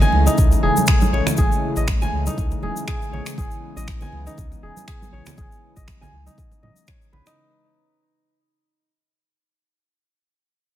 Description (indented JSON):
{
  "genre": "afro house",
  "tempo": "120 BPM",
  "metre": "4/4",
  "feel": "swing 55% on 16ths",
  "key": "unclear",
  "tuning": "A4 = 442 Hz",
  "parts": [
    { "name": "warm analog pad", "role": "sustained chords", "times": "0.0-7.3 s", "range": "C#3 to B3", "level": "-27 LUFS", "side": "left 3 dB", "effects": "lush chorus, sidechain pumping" },
    { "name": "kora", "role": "arpeggios", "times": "0.0-8.9 s", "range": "D#4 to G#5", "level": "-26 LUFS", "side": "right 2 dB", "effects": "sidechain pumping, low-pass filter, ping-pong delay" },
    { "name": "warm sub bass", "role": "bass", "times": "0.0-7.2 s", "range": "E1 to A2", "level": "-22 LUFS", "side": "equal", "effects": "sidechain pumping" },
    { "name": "congas", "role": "percussion", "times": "0.0-7.2 s", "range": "none", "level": "-28 LUFS", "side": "right 3 dB", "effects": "none" },
    { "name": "egg shaker", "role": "percussion", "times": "0.0-7.4 s", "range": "none", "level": "-32 LUFS", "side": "left 4 dB", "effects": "none" },
    { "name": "electronic kick drum", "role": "drums", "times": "0.4-7.0 s", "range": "none", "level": "-21 LUFS", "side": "equal", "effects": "none" },
    { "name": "electronic finger snaps", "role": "drums", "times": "0.9-7.4 s", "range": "none", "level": "-27 LUFS", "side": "right 1 dB", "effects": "overdrive" }
  ],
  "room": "studio ambience",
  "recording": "none",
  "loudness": "-17 LUFS",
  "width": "side -12 dB against mid",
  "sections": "0.0-7.4 A section",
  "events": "fade-out 0.0-7.4",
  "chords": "0.0 Amaj7"
}